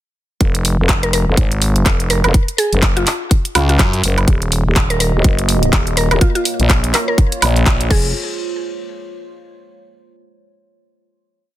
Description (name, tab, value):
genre	bass house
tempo	124 BPM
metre	4/4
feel	swing 58% on 16ths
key	F phrygian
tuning	A4 = 441 Hz
part	growling FM bass	bass	0.4-8.1 s	Eb1 to Gb2	-16 LUFS	equal	tube saturation, sidechain pumping
part	electronic kick drum	drums	0.4-8.0 s	none	-14 LUFS	equal	none
part	garage drum kit	drums	0.4-8.0 s	crash cymbal, handclaps, hi-hat, woodblock	-18 LUFS	right 1 dB	none
part	mallet-like synth pluck	melody	1.0-8.0 s	F4 to Bb4	-22 LUFS	equal	chorus, ping-pong delay
part	dark analog pad	sustained chords	4.7-8.1 s	Bb3 to Eb5	-25 LUFS	right 2 dB	chorus, phaser, sidechain pumping
room	digital ambience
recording	dense, heavily limited modern master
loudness	-13 LUFS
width	side -14 dB against mid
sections	0.4-8.1 drop; 8.1-10.1 final hit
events	drop 0.4-8.1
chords	0.4 Fm; 2.3 Gb5; 4.3 Ebm; 6.2 Bbm; 7.9 Fm; 8.1 N.C.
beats	| 0.41 0.89 1.37 1.86 | 2.34 2.83 3.31 3.79 | 4.28 4.76 5.25 5.73 | 6.21 6.70 7.18 7.66